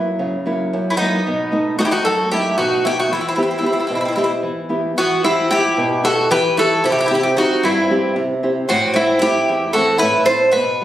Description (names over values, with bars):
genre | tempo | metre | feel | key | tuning
greek folk, Greek bouzouki band | 226 BPM (eighths) | 7/8 | straight | E harmonic minor | A4 = 440 Hz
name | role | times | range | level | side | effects
nylon-string guitar | accompaniment | 0.0-10.8 s | E2 to F#5 | -19 LUFS | right 1 dB | none
Greek bouzouki | melody | 0.9-10.8 s | D#4 to C5 | -17 LUFS | equal | none
Greek bouzouki | second line | 0.9-10.8 s | B3 to A4 | -22 LUFS | equal | none
room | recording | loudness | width
light reverb | recorded on a phone in the room, studio reverb | -15 LUFS | side -12 dB against mid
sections
0.0-5.0 A section; 5.0-10.8 B section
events
none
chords
0.0 F#7; 1.2 B7; 3.1 Em; 5.0 Emadd9; 6.8 C; 8.7 Am